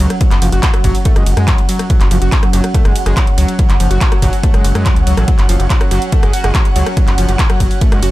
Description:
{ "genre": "driving peak-time techno", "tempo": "142 BPM", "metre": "4/4", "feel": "straight", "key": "unclear", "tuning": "A4 = 441 Hz", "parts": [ { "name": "overdriven synth lead", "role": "riff", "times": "0.0-8.1 s", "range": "E#3 to F#4", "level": "-21 LUFS", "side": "right 1 dB", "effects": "distortion, chorus, sidechain pumping, tape echo" }, { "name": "gritty driven synth bass", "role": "bass", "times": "0.0-8.1 s", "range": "F#1 to F#2", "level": "-14 LUFS", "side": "equal", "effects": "sidechain pumping" }, { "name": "analog drone", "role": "drone", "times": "0.0-8.1 s", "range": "F#3 to C#4", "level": "-25 LUFS", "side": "right 1 dB", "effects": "chorus, sidechain pumping" }, { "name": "techno drum kit", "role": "drums", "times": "0.0-8.1 s", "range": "handclaps, hi-hat, ride cymbal, rim click", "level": "-21 LUFS", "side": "equal", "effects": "overdrive, small room ambience" }, { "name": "airy breathy pad", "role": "texture", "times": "0.0-8.1 s", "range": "F#5", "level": "-25 LUFS", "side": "right 2 dB", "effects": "chorus, phaser, sidechain pumping" }, { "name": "electronic kick drum", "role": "drums", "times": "0.2-7.9 s", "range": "none", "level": "-13 LUFS", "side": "equal", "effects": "small room ambience" } ], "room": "little or no reverb", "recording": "dark, warm production", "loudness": "-10 LUFS", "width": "side -17 dB against mid", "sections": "0.0-8.1 A section", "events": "none", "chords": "0.0 F#5", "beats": "| 0.21 0.63 1.05 1.48 | 1.90 2.32 2.74 3.17 | 3.59 4.01 4.43 4.86 | 5.28 5.70 6.12 6.55 | 6.97 7.39 7.81" }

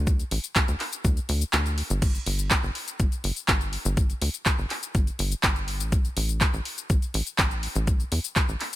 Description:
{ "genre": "progressive house", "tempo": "123 BPM", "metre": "4/4", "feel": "straight", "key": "unclear", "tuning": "A4 = 442 Hz", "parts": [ { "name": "tight sequencer bass", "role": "bass", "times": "0.0-8.6 s", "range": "G1 to E2", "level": "-27 LUFS", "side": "equal", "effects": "sidechain pumping" }, { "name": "deep house drum kit", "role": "drums", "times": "0.1-8.8 s", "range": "cabasa, crash cymbal, handclaps, hi-hat", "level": "-27 LUFS", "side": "equal", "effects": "sidechain pumping on hats, sidechain pumping on perc, sidechain pumping on cymbals" }, { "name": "electronic kick drum", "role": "drums", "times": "0.1-8.5 s", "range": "none", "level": "-24 LUFS", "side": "equal", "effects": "none" } ], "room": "little or no reverb", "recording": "none", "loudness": "-23 LUFS", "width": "side -14 dB against mid", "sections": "0.0-8.8 A section", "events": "kick drops out 1.5-2.0", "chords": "none", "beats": "| 0.07 0.56 1.04 1.53 | 2.02 2.51 3.00 3.48 | 3.97 4.46 4.95 5.43 | 5.92 6.41 6.90 7.39 | 7.87 8.36" }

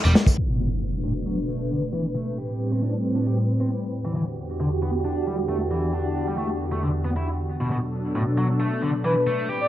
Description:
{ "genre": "breakbeat", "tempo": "135 BPM", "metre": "4/4", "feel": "straight", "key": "unclear", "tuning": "A4 = 441 Hz", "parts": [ { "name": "scooped high-gain guitar", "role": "riff", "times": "0.0-9.7 s", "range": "A2 to G4", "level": "-28 LUFS", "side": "equal", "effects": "distortion, tube saturation, low-pass filter, dub echo" }, { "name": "phased analog pad", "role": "sustained chords", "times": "0.8-9.7 s", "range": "E2 to B4", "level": "-24 LUFS", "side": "equal", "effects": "phaser, chorus, sidechain pumping" }, { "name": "impact", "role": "sound effects", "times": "0.4-2.2 s", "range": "none", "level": "-28 LUFS", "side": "equal", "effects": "none" }, { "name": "breathy flute-like synth lead", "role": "melody", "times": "9.0-9.7 s", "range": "B4 to D5", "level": "-22 LUFS", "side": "left 1 dB", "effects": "chorus, old record sound, dub echo" } ], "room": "moderate plate reverb, RT60 1.2 s, small room ambience", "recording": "echo-heavy mix, vinyl crackle, low-pass filter", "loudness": "-22 LUFS", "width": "side -13 dB against mid", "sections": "0.4-9.7 A section", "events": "impact 0.4-2.2; filter sweep on distorted electric guitar 0.4-9.7; filter sweep 0.4-9.7", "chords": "0.4 Bm7; 2.2 Am9; 3.9 Em9; 7.5 Bm7", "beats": "| 0.38 0.82 1.27 1.71 | 2.16 2.60 3.05 3.49 | 3.94 4.38 4.83 5.27 | 5.71 6.16 6.60 7.05 | 7.49 7.94 8.38 8.82 | 9.27" }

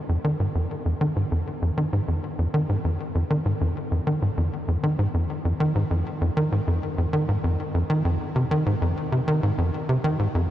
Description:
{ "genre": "ambient", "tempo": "98 BPM", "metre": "4/4", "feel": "straight", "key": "F minor", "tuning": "A4 = 440 Hz", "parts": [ { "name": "tight sequencer bass", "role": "solo", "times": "0.1-10.5 s", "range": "F2 to Eb3", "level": "-22 LUFS", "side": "equal", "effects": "wide subtle chorus, ping-pong delay" } ], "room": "wet huge ambient reverb, RT60 7.4 s", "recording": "worn, warbling old tape, cassette tape, warbly pitch drift", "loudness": "-22 LUFS", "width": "side -12 dB against mid", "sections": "0.0-10.5 A section", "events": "none", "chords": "none", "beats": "0.09 | 0.70 1.31 1.93 2.54 | 3.15 3.76 4.38 4.99 | 5.60 6.21 6.83 7.44 | 8.05 8.66 9.27 9.89" }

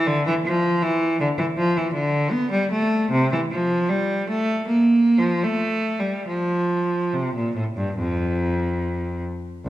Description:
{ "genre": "classical, baroque-style suite movement for unaccompanied cello", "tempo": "69-82 BPM", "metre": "4/4", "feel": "rubato", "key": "F major", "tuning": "A4 = 440 Hz", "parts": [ { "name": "rich cello", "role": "solo", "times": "0.0-9.7 s", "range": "C2 to B3", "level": "-20 LUFS", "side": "equal", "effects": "none" } ], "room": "wet recital hall reverb, RT60 1.7 s", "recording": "minimal, uncompressed stereo recording", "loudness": "-20 LUFS", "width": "side -14 dB against mid", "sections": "0.0-9.6 A section", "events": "none", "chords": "none", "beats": "| 0.07 0.82 1.57 2.32 | 3.12 3.90 4.66 5.44 | 6.26 7.12 7.95 8.80 | 9.63" }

